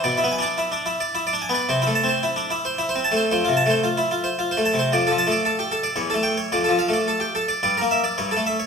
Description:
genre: classical, baroque-style suite movement for harpsichord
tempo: 110 BPM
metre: 3/4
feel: rubato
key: D minor from 4.9 s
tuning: A4 = 441 Hz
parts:
  - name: harpsichord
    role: solo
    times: 0.0-8.7 s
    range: E2 to A5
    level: -19 LUFS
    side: equal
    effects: none
room: wet recital hall reverb, RT60 1.9 s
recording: minimal, uncompressed stereo recording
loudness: -19 LUFS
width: side -6 dB against mid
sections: 0.0-8.7 A section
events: none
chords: 0.0 E7/B; 1.7 Am/C; 3.3 F; 4.9 Dm/F; 6.0 A7/E; 6.5 Dm/F; 7.6 Em7b5/G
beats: | 0.02 0.58 1.14 | 1.68 2.24 2.78 | 3.31 3.86 4.39 | 4.93 5.46 6.00 | 6.54 7.09 7.63 | 8.18

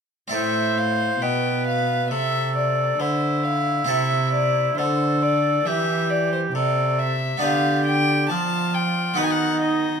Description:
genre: classical, baroque-style sonata movement with continuo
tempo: 68 BPM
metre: 4/4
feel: straight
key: A minor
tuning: A4 = 440 Hz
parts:
  - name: rich violin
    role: melody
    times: 0.3-10.0 s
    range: C5 to A5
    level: -25 LUFS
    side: left 5 dB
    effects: none
  - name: warm oboe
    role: second line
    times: 0.3-10.0 s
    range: D#4 to C5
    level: -25 LUFS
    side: right 3 dB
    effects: none
  - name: harpsichord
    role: accompaniment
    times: 0.3-10.0 s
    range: A2 to B4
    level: -27 LUFS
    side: equal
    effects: none
  - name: dark cello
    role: bass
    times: 0.3-10.0 s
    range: A2 to F3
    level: -24 LUFS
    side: right 1 dB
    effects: none
room: light reverb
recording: minimal, uncompressed stereo recording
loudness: -19 LUFS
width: side -6 dB against mid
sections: 0.3-10.0 A section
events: none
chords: 0.3 Am; 3.9 Am/C; 7.4 Bdim/D; 9.2 B/D#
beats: | 0.33 1.22 2.11 3.00 | 3.90 4.79 5.67 6.55 | 7.42 8.30 9.18

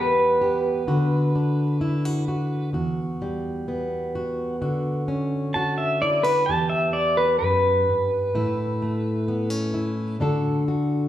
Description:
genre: acoustic folk duo or small band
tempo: 64 BPM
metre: 4/4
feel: straight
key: E dorian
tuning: A4 = 438 Hz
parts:
  - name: pedal steel guitar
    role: melody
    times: 0.0-10.2 s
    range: B4 to A5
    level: -22 LUFS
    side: equal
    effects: slapback echo
  - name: fingerpicked plugged-in steel-string acoustic guitar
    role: accompaniment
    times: 0.0-11.1 s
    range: E2 to A4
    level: -24 LUFS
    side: equal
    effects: none
room: wet large studio reverb, RT60 1.4 s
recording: heard from further back in the room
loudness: -21 LUFS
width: side -12 dB against mid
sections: 0.0-11.1 A section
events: pedal steel guitar solo 0.0-11.1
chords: 0.0 Em; 0.9 Bm/D; 2.7 Emadd9; 4.6 Bmadd9/D; 6.5 Em; 8.3 A; 10.2 D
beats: 0.86 1.80 | 2.74 3.67 4.61 5.54 | 6.48 7.41 8.34 9.28 | 10.21

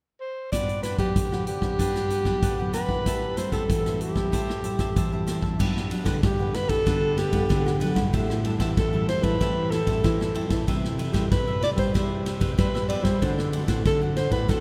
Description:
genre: samba and choro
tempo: 94 BPM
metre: 4/4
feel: straight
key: G major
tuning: A4 = 440 Hz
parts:
  - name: breathy soprano saxophone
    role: melody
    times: 0.2-14.6 s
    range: G4 to D5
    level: -30 LUFS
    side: equal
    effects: none
  - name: cavaquinho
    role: accompaniment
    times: 0.5-14.6 s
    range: D4 to A5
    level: -39 LUFS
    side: equal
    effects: none
  - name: nylon-string guitar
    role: accompaniment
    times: 0.5-14.6 s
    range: G2 to F#4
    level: -33 LUFS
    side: equal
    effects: none
  - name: swinging big-band drum kit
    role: drums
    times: 0.5-14.6 s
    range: crash cymbal, hi-hat, kick drum, ride cymbal, rim click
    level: -28 LUFS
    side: equal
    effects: none
  - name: nylon-string guitar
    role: bass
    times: 5.6-14.6 s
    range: G2 to G3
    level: -30 LUFS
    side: equal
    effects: none
room: wet cathedral reverb, RT60 6.4 s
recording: recorded in a church or concert hall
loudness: -25 LUFS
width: mono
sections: 0.5-5.6 A section; 5.6-14.6 B section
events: none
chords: 0.0 N.C.; 0.5 Gmaj7; 3.1 Am7; 5.6 Gmaj7; 8.1 Am7; 10.7 Cmaj7; 13.2 D7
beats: | 0.53 1.16 1.79 2.43 | 3.06 3.70 4.33 4.96 | 5.60 6.23 6.87 7.50 | 8.14 8.77 9.41 10.04 | 10.68 11.31 11.95 12.59 | 13.22 13.86 14.49

